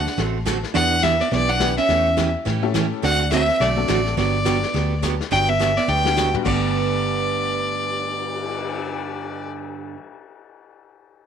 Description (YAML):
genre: country, western swing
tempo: 210 BPM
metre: 4/4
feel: swing 59% on 8ths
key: G major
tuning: A4 = 440 Hz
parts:
  - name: clear fiddle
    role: melody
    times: 0.0-9.5 s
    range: D5 to G5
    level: -22 LUFS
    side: left 1 dB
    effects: none
  - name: hollow-body jazz guitar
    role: second line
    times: 0.0-9.6 s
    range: A3 to D4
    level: -28 LUFS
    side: right 10 dB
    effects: none
  - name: vintage muted fingered electric bass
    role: bass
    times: 0.0-9.6 s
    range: G1 to A2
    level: -24 LUFS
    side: left 1 dB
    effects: none
  - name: vintage brush drum kit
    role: drums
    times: 0.1-8.7 s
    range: brushed snare drum, crash cymbal, cymbal swell, hi-hat, kick drum, snare drum, toms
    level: -30 LUFS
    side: left 8 dB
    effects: none
  - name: picked steel-string acoustic guitar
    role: accompaniment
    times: 0.2-10.0 s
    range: G2 to A4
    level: -26 LUFS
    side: right 10 dB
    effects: none
  - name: tack piano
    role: accompaniment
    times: 1.6-9.6 s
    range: G2 to B4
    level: -29 LUFS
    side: left 12 dB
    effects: none
room: light reverb, small room ambience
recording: 1960s-style stereo with parts hard left and right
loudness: -18 LUFS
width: side -8 dB against mid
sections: 0.0-5.3 A section; 5.3-6.5 B section; 6.5-8.7 C section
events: drum fill 5.9-6.5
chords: 0.0 D7; 0.7 Em7; 1.9 A7/E; 3.0 D7; 4.2 Gmaj7; 6.5 G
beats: 0.18 0.46 | 0.75 1.03 1.32 1.60 | 1.89 2.17 2.46 2.74 | 3.03 3.31 3.60 3.89 | 4.17 4.46 4.74 5.03 | 5.31 5.60 5.89 6.17 | 6.46 6.74 7.03 7.32 | 7.60 7.89 8.17 8.46